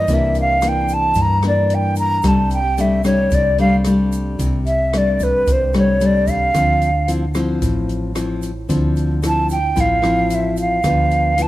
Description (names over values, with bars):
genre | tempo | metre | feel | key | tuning
bossa nova | 112 BPM | 4/4 | straight | unclear | A4 = 440 Hz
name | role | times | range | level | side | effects
breathy hollow jazz flute | melody | 0.0-11.5 s | B4 to Bb5 | -17 LUFS | right 1 dB | none
nylon-string guitar | accompaniment | 0.0-11.5 s | G2 to E4 | -20 LUFS | left 2 dB | none
hollow-body short-scale fingered electric bass | bass | 0.0-11.5 s | A1 to G2 | -20 LUFS | equal | none
open jazz drum kit | drums | 0.1-11.5 s | hi-hat, kick drum, rim click | -26 LUFS | equal | none
egg shaker | percussion | 0.1-11.5 s | none | -41 LUFS | right 6 dB | none
room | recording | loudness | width
light reverb | none | -14 LUFS | side -16 dB against mid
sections
0.0-11.5 A section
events
flute solo 0.0-11.5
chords
0.0 C9; 2.2 Csus2; 6.5 Dm9; 10.8 Dm69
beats
| 0.08 0.62 1.16 1.70 | 2.24 2.77 3.31 3.85 | 4.39 4.93 5.47 6.00 | 6.54 7.08 7.62 8.15 | 8.69 9.23 9.76 10.30 | 10.84 11.37